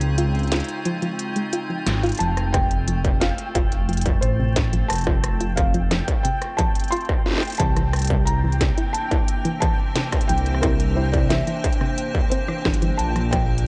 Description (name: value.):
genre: IDM.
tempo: 89 BPM.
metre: 4/4.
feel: straight.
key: F major.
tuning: A4 = 441 Hz.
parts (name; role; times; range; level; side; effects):
icy glass pad; sustained chords; 0.0-13.7 s; Bb2 to C5; -33 LUFS; equal; chorus, built-in reverb, vintage 12-bit sampler grit.
dark detuned saw bass; bass; 0.0-13.7 s; F1 to Db2; -25 LUFS; equal; tube saturation.
industrial drum kit; drums; 0.0-13.7 s; hi-hat, rim click, snare drum; -30 LUFS; equal; none.
flickering grainy texture; texture; 0.0-13.7 s; G5; -37 LUFS; equal; built-in reverb.
soft round pluck; arpeggios; 0.2-13.5 s; E2 to F4; -30 LUFS; equal; chorus, dub echo.
felt-muted upright piano; melody; 2.2-13.7 s; Bb4 to C6; -31 LUFS; equal; vintage 12-bit sampler grit, delay.
electronic kick drum; drums; 2.5-13.5 s; none; -25 LUFS; equal; distortion.
room: light reverb.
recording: dark, warm production, nothing above 10.9 kHz.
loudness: -22 LUFS.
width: mono.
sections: 0.0-13.7 A section.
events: break 0.0-2.2; filter sweep on synth arpeggio sound 0.0-13.7.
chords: 0.0 Dbmaj7; 2.2 F; 7.6 C7; 13.0 Bbmaj7.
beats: 0.18 0.85 1.53 | 2.20 2.88 3.55 4.23 | 4.90 5.57 6.25 6.92 | 7.60 8.27 8.95 9.62 | 10.29 10.97 11.64 12.32 | 12.99 13.66.